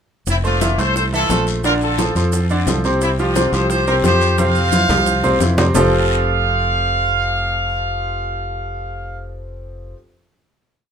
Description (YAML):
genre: latin, salsa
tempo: 176 BPM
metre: 4/4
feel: straight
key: F major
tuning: A4 = 442 Hz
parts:
  - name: brilliant horn section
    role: melody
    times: 0.3-9.2 s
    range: C4 to F5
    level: -20 LUFS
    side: right 1 dB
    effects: none
  - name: fingered electric bass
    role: bass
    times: 0.3-9.9 s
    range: F1 to F2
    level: -20 LUFS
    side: equal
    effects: none
  - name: bongos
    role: percussion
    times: 0.3-5.8 s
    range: none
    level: -26 LUFS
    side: left 4 dB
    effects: none
  - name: congas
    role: percussion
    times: 0.3-5.8 s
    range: none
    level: -23 LUFS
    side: equal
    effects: none
  - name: guiro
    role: percussion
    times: 0.3-5.8 s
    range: none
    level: -30 LUFS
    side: left 7 dB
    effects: none
  - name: maracas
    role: percussion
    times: 0.3-5.8 s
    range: none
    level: -30 LUFS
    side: right 8 dB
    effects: none
  - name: bright concert grand piano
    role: accompaniment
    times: 0.4-9.9 s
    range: C3 to E5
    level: -20 LUFS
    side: right 1 dB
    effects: none
room: moderate studio reverb, RT60 0.5 s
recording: minimal, uncompressed stereo recording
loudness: -15 LUFS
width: side -7 dB against mid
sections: 0.3-5.7 A section; 5.7-8.5 final chord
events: drum fill 4.4-5.7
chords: 0.3 Fmaj7; 1.6 Bbmaj9; 3.0 Csus4; 4.4 Fsus2; 5.7 Fadd9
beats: | 0.27 0.61 0.96 1.30 | 1.64 1.99 2.33 2.67 | 3.01 3.36 3.70 4.04 | 4.38 4.72 5.07 5.41 | 5.75 6.09 6.43 6.77 | 7.11 7.45 7.79 8.13